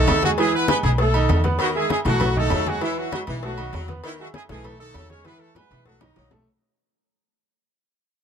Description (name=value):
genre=latin, salsa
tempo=197 BPM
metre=4/4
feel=straight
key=unclear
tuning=A4 = 440 Hz
part: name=brilliant horn section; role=melody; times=0.0-6.3 s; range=E3 to D#5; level=-24 LUFS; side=equal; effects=none
part: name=bright upright piano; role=accompaniment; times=0.0-6.4 s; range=D#3 to E6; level=-26 LUFS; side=right 4 dB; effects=none
part: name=upright bass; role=bass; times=0.0-6.4 s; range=B1 to E2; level=-22 LUFS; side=equal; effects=none
part: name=congas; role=percussion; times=0.1-6.4 s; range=none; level=-28 LUFS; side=left 3 dB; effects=none
part: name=cowbell and bongos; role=percussion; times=0.1-6.5 s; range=none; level=-33 LUFS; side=left 7 dB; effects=none
part: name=timbales and agogo bells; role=percussion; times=0.1-6.4 s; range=none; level=-31 LUFS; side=right 3 dB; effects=none
part: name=mellow saxophone section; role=second line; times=1.6-6.3 s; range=D#3 to F#3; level=-32 LUFS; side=left 3 dB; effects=none
room=light reverb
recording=dark, warm production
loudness=-19 LUFS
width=side -8 dB against mid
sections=0.0-6.5 A section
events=fade-out 0.0-6.5; drum fill 5.3-6.5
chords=0.4 E; 1.0 B7; 2.8 E; 3.4 B7; 4.0 Emaj7; 4.6 B7; 5.3 E; 5.9 B7